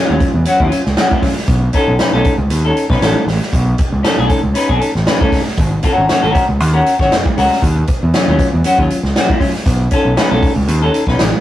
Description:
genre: funk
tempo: 117 BPM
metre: 4/4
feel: swing 56% on 16ths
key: unclear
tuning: A4 = 440 Hz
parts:
  - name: semi-hollow electric guitar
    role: accompaniment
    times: 0.0-11.2 s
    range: Gb3 to Db5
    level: -15 LUFS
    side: left 2 dB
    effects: none
  - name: growling fingered electric bass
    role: bass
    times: 0.1-11.3 s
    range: Gb1 to Fb2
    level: -16 LUFS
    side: equal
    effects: overdrive
  - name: swinging big-band drum kit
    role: drums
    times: 0.2-11.3 s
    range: hi-hat, kick drum, snare drum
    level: -16 LUFS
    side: equal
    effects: none
room: light reverb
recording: rough rehearsal-room recording, tube saturation, vinyl crackle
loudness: -11 LUFS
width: side -13 dB against mid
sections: 0.0-11.4 A section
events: none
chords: 0.0 Ebm9 (rootless); 1.5 Cb9; 5.6 Ab9sus4; 7.6 Ebm9; 9.7 Cb9

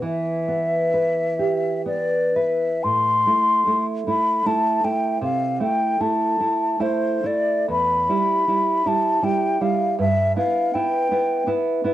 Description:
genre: romantic duo for flute and classical guitar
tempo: 57-82 BPM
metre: 3/4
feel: rubato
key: A minor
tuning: A4 = 440 Hz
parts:
  - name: mellow hollow concert flute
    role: melody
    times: 0.0-11.5 s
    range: C5 to C6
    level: -21 LUFS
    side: left 1 dB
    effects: none
  - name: nylon-string guitar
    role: accompaniment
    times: 0.0-11.9 s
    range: E2 to B4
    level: -22 LUFS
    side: right 2 dB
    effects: cassette tape
room: moderate spring reverb, RT60 1.4 s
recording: home recording on cassette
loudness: -18 LUFS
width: side -13 dB against mid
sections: 0.0-2.8 A section; 2.8-11.9 B section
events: none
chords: 0.0 Em; 2.8 Am; 5.2 Am/C; 7.7 Em; 10.0 Em/G

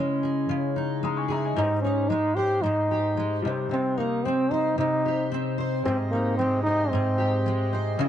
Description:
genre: acoustic pop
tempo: 112 BPM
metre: 4/4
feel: straight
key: Ab major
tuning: A4 = 440 Hz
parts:
  - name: clear upright piano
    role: accompaniment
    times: 0.0-8.1 s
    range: G3 to Eb6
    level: -35 LUFS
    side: left 4 dB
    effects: none
  - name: fingerpicked steel-string acoustic guitar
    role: accompaniment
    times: 0.0-8.1 s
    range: Ab2 to C5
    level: -26 LUFS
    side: equal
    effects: double-tracked left and right
  - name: clear trombone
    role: melody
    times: 1.6-7.7 s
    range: Bb3 to G4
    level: -25 LUFS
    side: equal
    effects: ping-pong delay
  - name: pedal harmonium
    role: sustained chords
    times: 5.8-8.1 s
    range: C3 to Eb5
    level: -34 LUFS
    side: equal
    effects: none
room: moderate studio reverb, RT60 0.5 s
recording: dark, warm production, nothing above 10.3 kHz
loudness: -23 LUFS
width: side -10 dB against mid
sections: 0.0-8.1 A section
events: none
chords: 0.0 Dbmadd9; 1.6 Abmaj7; 3.4 Cm; 5.8 Abmaj7

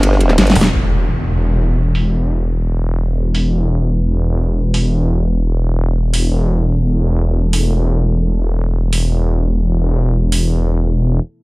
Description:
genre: dark technical drum and bass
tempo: free time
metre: none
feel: none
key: E minor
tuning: A4 = 440 Hz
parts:
  - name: dark analog pad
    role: sustained chords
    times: 0.0-11.4 s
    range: B3 to B4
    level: -29 LUFS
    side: right 2 dB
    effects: none
  - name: formant-sweep wobble bass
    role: bass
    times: 0.0-0.5 s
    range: G1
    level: -12 LUFS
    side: equal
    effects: chorus
  - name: crunchy breakbeat drum kit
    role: drums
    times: 0.0-0.6 s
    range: ride cymbal, snare drum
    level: -25 LUFS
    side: equal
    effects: high-pass filter on cymbals, high-pass filter on hats, high-pass filter on snare, high-pass filter on room
  - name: dubstep drum kit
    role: drums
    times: 0.0-10.4 s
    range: hi-hat, ride cymbal, snare drum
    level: -18 LUFS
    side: equal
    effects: low-pass filter on hats, low-pass filter on cymbals, low-pass filter on snare
  - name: snarling distorted saw bass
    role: bass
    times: 0.6-11.2 s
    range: E1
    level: -14 LUFS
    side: equal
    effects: distortion
  - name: impact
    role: sound effects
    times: 0.7-2.1 s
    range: none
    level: -21 LUFS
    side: equal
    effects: none
room: small room ambience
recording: none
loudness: -13 LUFS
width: side -22 dB against mid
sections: 0.7-11.4 A section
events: drum fill 0.4-0.7; band accent 0.6; impact 0.7-2.1; filter sweep on drum 0.7-11.4; break 11.2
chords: 0.0 E5

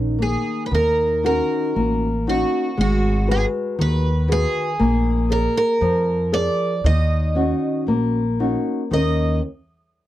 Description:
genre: fado-style ballad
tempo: 58 BPM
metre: 2/4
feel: rubato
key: Eb minor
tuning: A4 = 437 Hz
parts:
  - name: picked twelve-string acoustic guitar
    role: melody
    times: 0.0-9.4 s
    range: Eb4 to Eb5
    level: -22 LUFS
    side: right 2 dB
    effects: none
  - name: nylon-string guitar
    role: accompaniment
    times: 0.0-9.4 s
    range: Eb3 to D5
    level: -22 LUFS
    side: left 2 dB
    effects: none
  - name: upright bass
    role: bass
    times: 0.0-9.4 s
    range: Ab1 to F2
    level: -21 LUFS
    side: equal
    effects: none
room: little or no reverb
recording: dry, close 1970s-style studio recording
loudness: -18 LUFS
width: side -14 dB against mid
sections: 0.7-8.9 A section; 8.9-10.1 B section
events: none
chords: 0.0 Eb5; 0.7 Ebm7; 2.8 Abm7; 4.8 Bb7; 6.8 Ebm7; 8.9 Eb5

